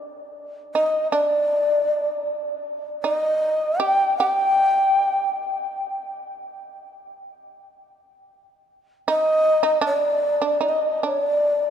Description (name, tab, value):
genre	japanese traditional, Japanese chamber music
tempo	71-80 BPM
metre	2/4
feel	rubato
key	unclear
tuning	A4 = 440 Hz
part	breathy mellow long shakuhachi	melody	0.7-5.8, 9.1-11.7 s	D5 to G5	-20 LUFS	equal	none
part	shamisen	second line	0.8-5.8, 9.1-11.7 s	D4 to G4	-28 LUFS	right 4 dB	none
room	wet cathedral reverb, RT60 6.7 s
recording	dark, warm production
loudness	-19 LUFS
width	side -8 dB against mid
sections	0.0-11.7 A section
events	none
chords	none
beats	0.74 | 1.52 2.29 | 3.05 3.81 | 4.62 5.46 | 6.29 7.10 | 7.90 8.68 | 9.44 10.22 | 11.03